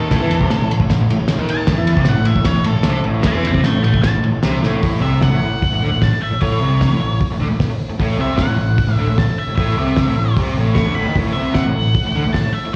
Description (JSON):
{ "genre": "garage rock duo or trio", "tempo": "152 BPM", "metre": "4/4", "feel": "straight", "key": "unclear", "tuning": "A4 = 444 Hz", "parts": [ { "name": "octave-fuzz lead guitar", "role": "melody", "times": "0.0-12.8 s", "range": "A4 to C#6", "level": "-26 LUFS", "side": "equal", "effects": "distortion, slapback echo" }, { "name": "fuzz guitar", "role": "riff", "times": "0.0-12.7 s", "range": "A2 to E3", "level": "-21 LUFS", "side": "equal", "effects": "distortion, slapback echo" }, { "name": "growling picked electric bass", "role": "bass", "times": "0.0-12.7 s", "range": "A1 to E2", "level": "-23 LUFS", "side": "equal", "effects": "overdrive" }, { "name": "cloth-damped thuddy drum kit", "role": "drums", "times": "0.1-12.4 s", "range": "hi-hat, kick drum, ride cymbal, snare drum", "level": "-22 LUFS", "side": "equal", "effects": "none" } ], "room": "light reverb", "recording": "live gig heard through the venue's PA, cassette tape, recital hall reverb", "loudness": "-17 LUFS", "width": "mono", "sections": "0.0-4.8 A section; 4.8-12.8 B section", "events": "lead electric guitar solo 0.0-4.8; drum fill 4.6", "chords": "0.0 A5" }